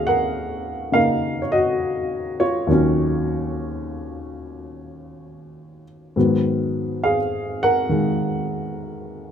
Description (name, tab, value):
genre	solo jazz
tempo	69 BPM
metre	4/4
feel	swing 67% on 8ths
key	Eb minor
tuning	A4 = 439 Hz
part	dark baby grand piano	solo	0.0-9.3 s	Eb2 to Gb5	-20 LUFS	equal	none
room	light reverb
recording	minimal, uncompressed stereo recording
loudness	-19 LUFS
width	side -8 dB against mid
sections	0.0-9.3 A section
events	none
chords	0.0 Ebm7; 6.2 Abm7